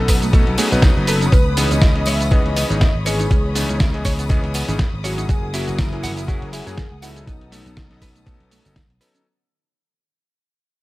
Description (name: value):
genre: nu-disco, nu disco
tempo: 121 BPM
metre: 4/4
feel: swing 56% on 16ths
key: unclear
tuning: A4 = 442 Hz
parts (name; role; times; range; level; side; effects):
- wide unison lead; melody; 0.0-8.8 s; D#4 to E5; -28 LUFS; equal; tape echo
- bright electric grand piano; accompaniment; 0.0-9.2 s; E3 to D#5; -26 LUFS; left 2 dB; sidechain pumping, slapback echo
- dark symphonic string section; sustained chords; 0.0-9.2 s; A4 to D#6; -31 LUFS; left 4 dB; sidechain pumping
- vintage slap bass; bass; 0.0-9.0 s; F#1 to F#2; -22 LUFS; equal; none
- clean electric guitar; riff; 0.1-9.2 s; A3 to F#5; -29 LUFS; right 4 dB; lush chorus
- dusty soul sampler-style drum kit; drums; 0.1-9.2 s; hi-hat, shaker, snare drum; -24 LUFS; equal; studio reverb
- electronic kick drum; drums; 0.1-8.9 s; none; -16 LUFS; equal; studio reverb
- tambourine; percussion; 0.1-9.2 s; none; -33 LUFS; left 2 dB; none
room: little or no reverb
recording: none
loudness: -15 LUFS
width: side -18 dB against mid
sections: 0.0-9.3 A section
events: drop 0.0-9.3; fade-out 1.3-9.3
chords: 0.0 B7; 1.3 C#m9; 5.3 F#9; 7.3 B7